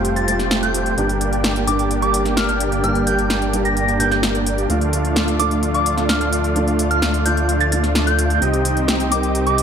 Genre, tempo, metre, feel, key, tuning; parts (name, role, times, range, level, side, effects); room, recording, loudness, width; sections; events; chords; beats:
EDM, festival progressive house; 129 BPM; 4/4; straight; G minor; A4 = 440 Hz
felt-muted upright piano; accompaniment; 0.0-9.6 s; G2 to Bb4; -26 LUFS; right 1 dB; ping-pong delay
lush unison pad; sustained chords; 0.0-9.6 s; C3 to G4; -28 LUFS; equal; chorus
dense compressed supersaw; riff; 0.0-9.6 s; A3 to G5; -21 LUFS; right 1 dB; low-pass filter, ping-pong delay
wide detuned saw bass; bass; 0.0-9.6 s; F1 to D2; -22 LUFS; equal; chorus
big-room dance drum kit; drums; 0.0-9.6 s; hi-hat, snare drum; -23 LUFS; left 1 dB
downlifter; sound effects; 0.0-1.0 s; barely audible
soft synth bell; melody; 0.2-9.6 s; D6 to Bb6; -22 LUFS; right 1 dB; chorus, phaser, ping-pong delay
light reverb, digital ambience; -16 LUFS; side -7 dB against mid
0.0-9.6 A section
0.0 Fadd9; 1.0 Gm; 4.7 Dm; 8.4 Cm
0.05 0.51 | 0.98 1.44 1.91 2.37 | 2.84 3.30 3.77 4.23 | 4.70 5.16 5.63 6.09 | 6.56 7.02 7.49 7.95 | 8.42 8.88 9.35